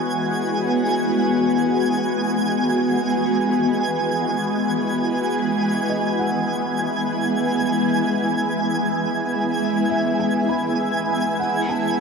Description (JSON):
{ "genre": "ambient", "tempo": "free time", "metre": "none", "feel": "none", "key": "E major", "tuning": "A4 = 440 Hz", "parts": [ { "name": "shimmering ambient pad", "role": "sustained chords", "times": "0.0-12.0 s", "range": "E3 to F#4", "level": "-20 LUFS", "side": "left 1 dB", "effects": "chorus, built-in reverb, phaser" }, { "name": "felt-muted upright piano", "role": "arpeggios", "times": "0.0-12.0 s", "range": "C#5 to B5", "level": "-32 LUFS", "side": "right 2 dB", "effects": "ping-pong delay" }, { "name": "overtone-sweeping drone", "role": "drone", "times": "0.1-12.0 s", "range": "E3", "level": "-37 LUFS", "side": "right 3 dB", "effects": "none" }, { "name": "twinkling granular texture", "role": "texture", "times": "0.0-12.0 s", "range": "G#5", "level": "-25 LUFS", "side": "right 2 dB", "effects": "built-in reverb" } ], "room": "wet huge ambient reverb, RT60 8.6 s", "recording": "none", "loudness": "-19 LUFS", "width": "side -5 dB against mid", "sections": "0.0-12.0 A section", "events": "fade-in on felt piano 0.0-12.0", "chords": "0.0 E; 11.4 Asus2/E" }